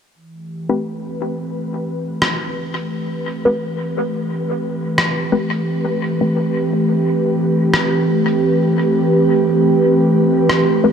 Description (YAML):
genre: ambient dub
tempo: 87 BPM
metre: 4/4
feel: swing 58% on 16ths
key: A minor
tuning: A4 = 438 Hz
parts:
  - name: airy breathy pad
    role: sustained chords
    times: 0.2-10.9 s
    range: E3 to B4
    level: -16 LUFS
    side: right 1 dB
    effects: chorus
  - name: filtered dub chord stab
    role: stabs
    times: 0.7-6.3, 10.8-10.9 s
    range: A3 to B4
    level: -21 LUFS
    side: left 2 dB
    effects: phaser, dub echo
  - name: electronic rim click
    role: drums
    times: 2.2-10.7 s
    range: none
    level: -22 LUFS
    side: left 1 dB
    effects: dub echo
room: moderate huge ambient reverb, RT60 8.4 s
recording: none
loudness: -15 LUFS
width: side -7 dB against mid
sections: 0.2-10.9 A section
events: filter sweep on analog synth pad 0.2-10.9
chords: 0.2 Am9